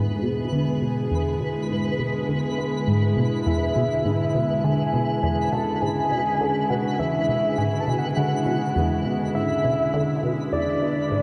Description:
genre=ambient, sequencer-driven space music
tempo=102 BPM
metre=4/4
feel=straight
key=unclear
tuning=A4 = 440 Hz
part: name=evolving wavetable pad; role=sustained chords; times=0.0-11.2 s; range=C#3 to G#4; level=-28 LUFS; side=equal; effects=chorus, built-in reverb, shimmer reverb
part: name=resonant blip pluck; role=riff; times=0.0-11.2 s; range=E2 to B3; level=-28 LUFS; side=equal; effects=phaser, lush chorus, analog delay
part: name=twinkling granular texture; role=texture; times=0.0-11.2 s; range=B4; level=-37 LUFS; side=equal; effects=built-in reverb, shimmer reverb
part: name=soft octave-layered synth lead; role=melody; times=3.5-11.2 s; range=D5 to A5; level=-27 LUFS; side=equal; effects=chorus, shimmer reverb, analog delay
room=wet cathedral reverb, RT60 6.2 s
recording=in a vast, echoing space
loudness=-23 LUFS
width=mono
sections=0.0-11.2 A section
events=none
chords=0.0 E7

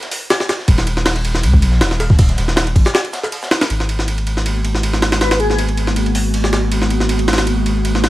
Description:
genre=drum and bass, jungle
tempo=159 BPM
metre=4/4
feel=swing 53% on 16ths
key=G# minor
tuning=A4 = 444 Hz
part: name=crunchy breakbeat drum kit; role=drums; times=0.0-3.7 s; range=hi-hat, shaker, snare drum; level=-29 LUFS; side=left 1 dB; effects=high-pass filter on hats, high-pass filter on snare, high-pass filter on perc, high-pass filter on room
part: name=jungle sampler-style drum kit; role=drums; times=0.0-8.1 s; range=hi-hat, kick drum, ride cymbal, snare drum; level=-16 LUFS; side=equal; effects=overdrive, high-pass filter on snare, high-pass filter on cymbals, high-pass filter on kick, high-pass filter on hats
part: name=soft dub sub bass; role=bass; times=0.7-8.1 s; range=D#1 to C#2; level=-17 LUFS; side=equal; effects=none
part: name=ethereal airy pad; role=sustained chords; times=4.1-8.1 s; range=G#3 to F#4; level=-21 LUFS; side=equal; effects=ensemble chorus, built-in reverb, vintage 12-bit sampler grit
part: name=airy dreamy lead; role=melody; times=5.2-5.6 s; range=G#4 to B4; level=-23 LUFS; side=left 2 dB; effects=chorus, phaser, dub echo
room=small room ambience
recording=vinyl crackle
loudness=-13 LUFS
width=side -16 dB against mid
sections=0.0-3.7 A section; 3.7-8.1 B section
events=break 2.9-3.7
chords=0.0 D#5; 3.7 G#m9

